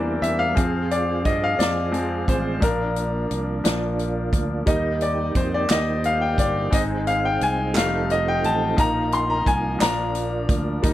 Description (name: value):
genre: slow gospel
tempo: 58 BPM (dotted quarters)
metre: 6/8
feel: straight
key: unclear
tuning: A4 = 440 Hz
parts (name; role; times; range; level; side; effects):
- bright upright piano; accompaniment; 0.0-10.9 s; E3 to C6; -22 LUFS; left 2 dB; none
- tonewheel organ; sustained chords; 0.0-10.9 s; F3 to Bb4; -29 LUFS; right 4 dB; slow rotary speaker, chorus vibrato
- fingered electric bass; bass; 0.0-10.9 s; F1 to G2; -27 LUFS; right 1 dB; none
- swinging big-band drum kit; drums; 0.2-10.9 s; hi-hat, kick drum, snare drum; -24 LUFS; equal; none
- group handclap; percussion; 5.7-10.1 s; none; -28 LUFS; right 6 dB; none
room: light reverb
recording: none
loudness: -20 LUFS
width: side -14 dB against mid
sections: 0.0-10.9 A section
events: upright piano solo 0.0-10.9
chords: 0.0 C7/E; 0.6 Fm; 2.6 Bb; 4.7 Eb; 6.7 Ab; 7.8 F7; 8.8 Bbsus4; 9.8 Bb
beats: | 0.57 1.59 | 2.62 3.65 | 4.67 5.70 | 6.72 7.75 | 8.78 9.81 | 10.84